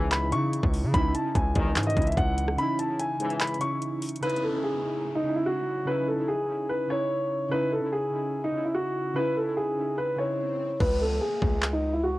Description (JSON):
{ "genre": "hip hop, trap", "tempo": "146 BPM", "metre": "4/4", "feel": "half-time", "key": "C# minor", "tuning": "A4 = 440 Hz", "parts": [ { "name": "dark baby grand piano", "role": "melody", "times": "0.0-12.2 s", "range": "D#4 to C#6", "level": "-28 LUFS", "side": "equal", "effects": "low-pass filter, cassette tape" }, { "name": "warbly lo-fi synth keys", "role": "accompaniment", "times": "0.0-10.8 s", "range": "C#3 to E4", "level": "-31 LUFS", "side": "right 1 dB", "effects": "chorus, low-pass filter, cassette tape" }, { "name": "mellow brass ensemble", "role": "stabs", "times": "0.0-3.6 s", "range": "G#1 to E3", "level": "-32 LUFS", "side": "left 2 dB", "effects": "cassette tape" }, { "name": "distorted 808-style bass", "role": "bass", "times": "0.0-2.6, 10.8-12.2 s", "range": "C#2 to C#3", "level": "-28 LUFS", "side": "equal", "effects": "distortion" }, { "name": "trap drum kit", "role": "drums", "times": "0.1-4.4, 10.8-11.7 s", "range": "crash cymbal, handclaps, hi-hat, kick drum, rim click", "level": "-28 LUFS", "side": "equal", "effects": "none" }, { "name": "downlifter and swell", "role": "sound effects", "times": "4.2-12.2 s", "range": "none", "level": "-42 LUFS", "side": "equal", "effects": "none" } ], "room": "little or no reverb", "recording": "home recording on cassette", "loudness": "-24 LUFS", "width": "side -17 dB against mid", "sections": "0.0-4.2 A section; 4.2-10.8 B section; 10.8-12.2 C section", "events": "break 2.6-4.2; swell 9.7-10.8; hi-hats muted 10.8-12.2", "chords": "0.0 C#madd9; 10.8 C#5" }